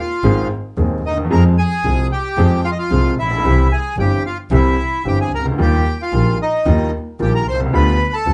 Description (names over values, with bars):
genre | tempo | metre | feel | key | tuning
tango | 113 BPM | 4/4 | rubato | F minor | A4 = 440 Hz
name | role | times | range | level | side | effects
bandoneon | melody | 0.0-8.3 s | Eb4 to C6 | -22 LUFS | equal | none
bright upright piano | accompaniment | 0.2-8.3 s | Eb1 to Ab4 | -22 LUFS | equal | none
warm double bass | bass | 0.2-8.3 s | G1 to F2 | -19 LUFS | equal | none
room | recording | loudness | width
moderate club reverb, RT60 0.7 s | dark, warm production, nothing above 10.9 kHz | -17 LUFS | mono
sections
0.0-8.3 A section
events
none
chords
0.0 Ab; 1.3 Fm; 3.4 C; 5.6 Ebadd9; 7.7 G7/D